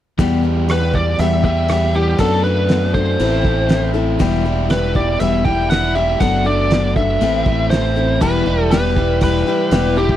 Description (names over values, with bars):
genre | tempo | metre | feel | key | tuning
folk rock and heartland rock | 120 BPM | 4/4 | straight | E minor | A4 = 441 Hz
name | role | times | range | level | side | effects
picked steel-string acoustic guitar | accompaniment | 0.2-10.2 s | E2 to A4 | -21 LUFS | left 7 dB | none
overdriven electric guitar | riff | 0.2-10.2 s | E2 to G4 | -22 LUFS | right 3 dB | spring reverb
fingered electric bass | bass | 0.2-10.2 s | E1 to F#2 | -19 LUFS | right 1 dB | none
cloth-damped thuddy drum kit | drums | 0.2-10.2 s | crash cymbal, hi-hat, kick drum, rim click, snare drum | -19 LUFS | right 1 dB | none
biting lead guitar | melody | 0.7-10.2 s | G4 to G5 | -19 LUFS | equal | overdrive
room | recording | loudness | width
light reverb | dry, close 1970s-style studio recording | -14 LUFS | side -12 dB against mid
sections
0.2-8.2 A section; 8.2-10.2 B section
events
none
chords
0.2 Em; 2.2 D6/F#; 3.2 Am; 4.2 Em; 6.2 D6/F#; 7.2 Am; 8.2 Em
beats
| 0.20 0.70 1.20 1.70 | 2.20 2.70 3.20 3.70 | 4.20 4.71 5.21 5.71 | 6.21 6.71 7.21 7.71 | 8.21 8.72 9.22 9.72